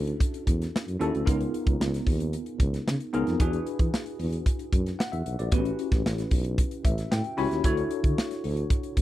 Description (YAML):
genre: polished 1980s jazz-funk pop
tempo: 113 BPM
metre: 4/4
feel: straight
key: D major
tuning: A4 = 440 Hz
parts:
  - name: tine electric piano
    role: accompaniment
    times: 0.0-9.0 s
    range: B3 to B5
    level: -30 LUFS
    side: left 1 dB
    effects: overdrive, fast stereo tremolo, lush chorus
  - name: breathy tuba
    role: bass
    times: 0.0-9.0 s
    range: A1 to E3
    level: -29 LUFS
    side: equal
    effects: none
  - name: crisp fusion drum kit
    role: drums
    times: 0.1-9.0 s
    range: hi-hat, kick drum, snare drum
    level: -26 LUFS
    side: equal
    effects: none
room: little or no reverb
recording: dry, close 1970s-style studio recording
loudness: -24 LUFS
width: side -14 dB against mid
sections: 0.0-9.0 A section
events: tine electric piano fill 6.6-7.6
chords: 0.0 Dmaj9; 1.3 C#13; 3.4 E9; 5.5 A13; 7.6 Dmaj9